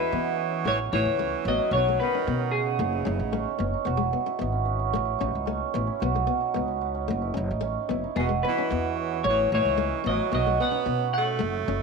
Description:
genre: highlife.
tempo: 112 BPM.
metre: 4/4.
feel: straight.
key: E major.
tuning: A4 = 440 Hz.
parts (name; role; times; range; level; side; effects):
semi-hollow electric guitar; melody; 0.0-3.6, 8.2-11.8 s; G#4 to F#5; -27 LUFS; left 4 dB; analog chorus.
raspy tenor saxophone; second line; 0.0-3.6, 8.2-11.8 s; B2 to B3; -30 LUFS; right 10 dB; none.
nylon-string guitar; accompaniment; 0.0-11.8 s; G#3 to E4; -33 LUFS; left 14 dB; none.
cimbalom; arpeggios; 0.0-11.8 s; A3 to F#4; -29 LUFS; right 10 dB; slapback echo.
upright bass; bass; 0.1-11.8 s; E1 to E3; -30 LUFS; left 1 dB; none.
room: moderate echo chamber reverb, RT60 1.8 s, studio reverb.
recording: 1960s-style stereo with parts hard left and right.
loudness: -23 LUFS.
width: side -4 dB against mid.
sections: 0.0-11.8 A section.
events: none.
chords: 0.0 E5; 0.7 A; 1.7 B; 2.8 F#madd9; 3.9 E; 4.9 A; 6.0 B; 7.1 F#m; 8.2 E5; 9.2 A; 10.3 B.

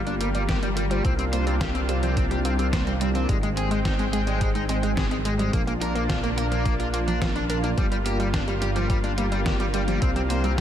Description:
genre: synthwave.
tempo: 107 BPM.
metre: 4/4.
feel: straight.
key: G phrygian.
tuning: A4 = 439 Hz.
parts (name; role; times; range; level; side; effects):
lush unison pad; sustained chords; 0.0-10.6 s; C3 to G5; -29 LUFS; equal; chorus, sidechain pumping.
chorused synth bass; bass; 0.0-10.6 s; G1 to C2; -26 LUFS; equal; sidechain pumping.
wide unison pluck; arpeggios; 0.1-10.6 s; F3 to Bb4; -31 LUFS; right 2 dB; tape echo.
crunchy overdriven guitar; riff; 0.1-10.6 s; G3 to C5; -30 LUFS; left 3 dB; wide subtle chorus, low-pass filter, tape echo.
detuned 8-bit digital drum machine; drums; 0.1-10.6 s; hi-hat, snare drum; -32 LUFS; equal; gated reverb.
electronic kick drum; drums; 0.5-10.6 s; none; -27 LUFS; equal; none.
room: light reverb.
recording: none.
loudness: -22 LUFS.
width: side -10 dB against mid.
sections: 0.0-10.6 A section.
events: none.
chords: 0.0 Gm7; 1.0 C7sus4; 3.3 Abmaj7; 5.5 Bb; 7.8 Gm7; 10.0 C7sus4.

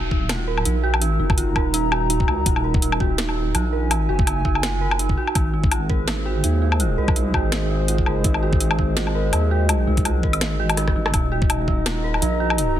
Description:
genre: half-time drum and bass.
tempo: 166 BPM.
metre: 4/4.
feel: swing 56% on 16ths, half-time.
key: Eb dorian.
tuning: A4 = 440 Hz.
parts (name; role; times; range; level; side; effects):
dark analog pad; sustained chords; 0.0-12.8 s; Ab3 to Bb5; -27 LUFS; right 1 dB; chorus, sidechain pumping.
dark detuned synth bell; arpeggios; 0.0-12.8 s; Eb4 to Bb4; -26 LUFS; right 3 dB; chorus, phaser, vintage 12-bit sampler grit, dub echo.
deep soft wobble bass; bass; 0.0-12.8 s; Eb1 to Eb2; -22 LUFS; equal; chorus.
electronic kick drum; drums; 0.1-11.8 s; none; -21 LUFS; equal; overdrive.
drum and bass drum kit; drums; 0.3-12.7 s; hi-hat, rim click, snare drum, woodblock; -25 LUFS; left 2 dB; soft clipping on snare.
metallic inharmonic drone; texture; 11.6-12.8 s; Eb4; -34 LUFS; left 2 dB; none.
room: little or no reverb.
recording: dense, heavily limited modern master.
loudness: -18 LUFS.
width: side -11 dB against mid.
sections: 0.0-12.8 A section.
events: drum fill 10.8-11.1.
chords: 0.0 Ebm; 5.4 Ab; 11.1 Ebm.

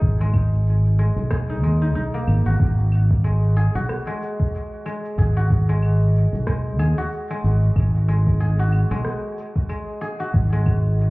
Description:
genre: organic downtempo.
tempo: 93 BPM.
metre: 4/4.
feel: swing 58% on 16ths.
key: G# minor.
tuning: A4 = 445 Hz.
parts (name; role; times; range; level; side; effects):
guzheng; arpeggios; 0.0-11.1 s; G#3 to G#4; -28 LUFS; left 1 dB; ping-pong delay.
fretless electric bass; bass; 0.0-11.1 s; G#1 to D#2; -18 LUFS; equal; sidechain pumping.
electronic kick drum; drums; 0.0-10.8 s; none; -20 LUFS; equal; none.
electronic shaker, claves and rim click; drums; 0.0-11.1 s; none; -35 LUFS; right 1 dB; none.
room: little or no reverb.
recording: heard muffled through a wall, club reverb, EQ.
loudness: -18 LUFS.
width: side -23 dB against mid.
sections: 0.0-11.1 A section.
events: none.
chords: 0.0 Bmaj7/G#; 7.8 G#7(no3); 10.3 N.C..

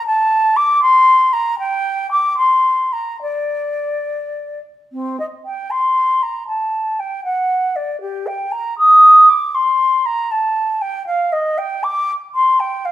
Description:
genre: classical, baroque-style fantasia for unaccompanied flute.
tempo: 66-80 BPM (dotted quarters).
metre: 6/8.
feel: rubato.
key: G minor.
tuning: A4 = 440 Hz.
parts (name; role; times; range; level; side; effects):
mellow concert flute; solo; 0.0-12.9 s; C4 to Eb6; -13 LUFS; equal; none.
room: wet stone room reverb, RT60 1.1 s.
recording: heard from further back in the room.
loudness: -13 LUFS.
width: side -13 dB against mid.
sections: 0.0-4.9 A section; 4.9-12.9 B section.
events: none.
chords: none.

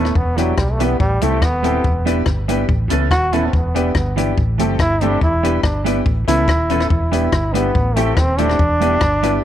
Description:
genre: ska.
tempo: 142 BPM.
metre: 4/4.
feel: straight.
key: E minor.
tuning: A4 = 442 Hz.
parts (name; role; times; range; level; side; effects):
bright trombone; melody; 0.0-9.4 s; F#3 to F#4; -20 LUFS; equal; none.
mellow electric guitar; accompaniment; 0.0-9.4 s; E3 to A4; -23 LUFS; right 12 dB; tube saturation, analog chorus, slapback echo.
warm upright piano; stabs; 0.0-9.4 s; C4 to B4; -23 LUFS; left 10 dB; none.
hollow-body short-scale fingered electric bass; bass; 0.0-9.4 s; D#1 to C#2; -20 LUFS; equal; none.
compact cocktail drum kit; drums; 0.1-9.3 s; hi-hat, kick drum, rim click; -20 LUFS; left 1 dB; none.
room: light reverb, small room reverb.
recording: 1960s-style stereo with parts hard left and right.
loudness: -14 LUFS.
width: side -11 dB against mid.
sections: 0.0-9.4 A section.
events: trombone solo 0.0-9.4.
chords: 0.2 Em7; 1.0 Am7; 1.8 Em7; 2.7 Aadd9; 3.5 Em7; 4.4 Am7; 5.2 Em7; 6.1 Aadd9; 6.9 Em7; 7.7 Am7; 8.6 Em7.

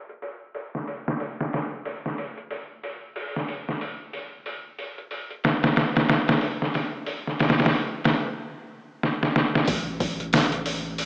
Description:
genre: trip hop.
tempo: 92 BPM.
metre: 4/4.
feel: swing 60% on 16ths.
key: unclear.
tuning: A4 = 440 Hz.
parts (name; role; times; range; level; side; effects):
trip hop sampler-style drum kit; drums; 0.1-11.1 s; hi-hat, kick drum, snare drum; -23 LUFS; equal; overdrive, low-pass filter on hats, low-pass filter on snare, low-pass filter on kick, low-pass filter on room.
soft dub sub bass; bass; 9.7-11.1 s; A1; -33 LUFS; equal; none.
room: moderate lush hall reverb, RT60 2.4 s.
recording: rough home demo mix, low-pass filter, small speaker sound.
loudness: -22 LUFS.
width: side -32 dB against mid.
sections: 0.0-9.7 A section; 9.7-11.1 B section.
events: filter sweep 0.0-9.7; drum fill 9.0-9.7.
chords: none.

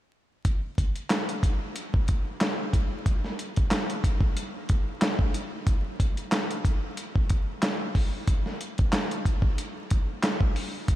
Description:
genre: hip hop.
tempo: 92 BPM.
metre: 4/4.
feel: swing 55% on 16ths.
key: none.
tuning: none.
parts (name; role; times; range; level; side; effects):
dusty soul sampler-style drum kit; drums; 0.4-11.0 s; handclaps, hi-hat, kick drum, snare drum; -24 LUFS; equal; none.
room: light reverb.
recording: vinyl crackle.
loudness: -25 LUFS.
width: side -14 dB against mid.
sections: 0.5-5.7 A section; 5.7-11.0 B section.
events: none.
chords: none.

